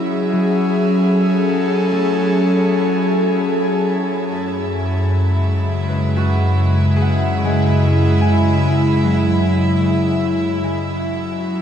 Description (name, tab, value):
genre	ambient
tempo	75 BPM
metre	4/4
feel	straight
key	F# minor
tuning	A4 = 440 Hz
part	airy breathy pad	sustained chords	0.0-11.6 s	F#2 to A4	-15 LUFS	equal	chorus
part	concert harp	arpeggios	0.0-10.8 s	F#3 to G#5	-24 LUFS	equal	diffuse ambient delay
part	clear studio violin section	texture	0.0-11.6 s	E4 to E5	-28 LUFS	right 2 dB	none
room	wet shimmer reverb, RT60 8.2 s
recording	dark, warm production, nothing above 10.5 kHz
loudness	-14 LUFS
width	side -8 dB against mid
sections	0.0-11.6 A section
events	fade-in on harp 0.0-11.6; fade-in on violin section 0.0-11.6; fade-out 8.6-11.6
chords	0.0 F#m7; 4.3 C#m7/F#; 10.7 F#5